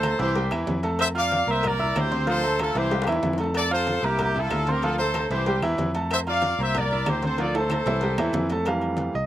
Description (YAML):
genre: latin, salsa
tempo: 188 BPM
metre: 4/4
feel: straight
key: unclear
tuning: A4 = 440 Hz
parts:
  - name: brilliant horn section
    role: melody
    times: 0.0-8.5 s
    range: E4 to F5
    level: -25 LUFS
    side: equal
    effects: slapback echo
  - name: bright grand piano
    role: accompaniment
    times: 0.0-9.3 s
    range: E3 to F6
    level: -27 LUFS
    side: right 2 dB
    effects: none
  - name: fingered electric bass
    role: bass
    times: 0.0-9.3 s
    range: C2 to F2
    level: -28 LUFS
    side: equal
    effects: none
  - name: claves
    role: percussion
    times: 0.0-8.8 s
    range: none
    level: -37 LUFS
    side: left 5 dB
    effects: none
  - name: congas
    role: percussion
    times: 0.0-9.1 s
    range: none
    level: -34 LUFS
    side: left 2 dB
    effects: none
  - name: cowbell and bongos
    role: percussion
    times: 0.0-9.1 s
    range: none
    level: -36 LUFS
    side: left 7 dB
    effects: slapback echo
  - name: timbales and agogo bells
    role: percussion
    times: 0.0-9.1 s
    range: none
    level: -33 LUFS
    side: right 4 dB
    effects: slapback echo
room: little or no reverb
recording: recorded outdoors, with no room sound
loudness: -21 LUFS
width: side -13 dB against mid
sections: 0.0-8.7 A section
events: drum fill 2.9-3.6, 7.4-8.7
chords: 0.4 C; 1.0 F; 1.6 C7; 2.3 Dm7; 2.9 C; 3.6 Fmaj7; 4.2 C7; 4.8 Dm7; 5.5 C; 6.1 F; 6.7 C7; 7.4 Dm7; 8.0 C